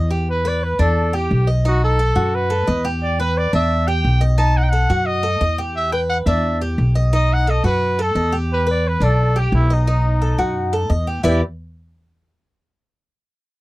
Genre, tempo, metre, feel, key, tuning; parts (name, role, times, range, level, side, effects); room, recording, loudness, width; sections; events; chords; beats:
latin, Cuban son and guajira; 175 BPM; 4/4; straight; E minor; A4 = 439 Hz
Cuban tres; arpeggios; 0.0-11.4 s; D4 to D#5; -23 LUFS; equal
upright bass; bass; 0.0-11.4 s; B1 to F#2; -18 LUFS; equal
warm trumpet; melody; 0.3-11.4 s; D#4 to A5; -21 LUFS; equal
little or no reverb; dry, close 1970s-style studio recording; -16 LUFS; side -18 dB against mid
0.3-11.2 A section; 11.2-12.6 B section
0.3 Em7; 1.7 B7; 3.0 Em7; 4.4 B7; 5.8 Em7; 7.1 B7; 8.5 Em7; 9.9 B7; 11.2 E5
| 0.28 0.62 0.97 1.31 | 1.65 2.00 2.34 2.68 | 3.02 3.36 3.71 4.05 | 4.39 4.73 5.08 5.42 | 5.76 6.10 6.45 6.79 | 7.13 7.47 7.82 8.16 | 8.50 8.84 9.19 9.53 | 9.87 10.22 10.56 10.90 | 11.25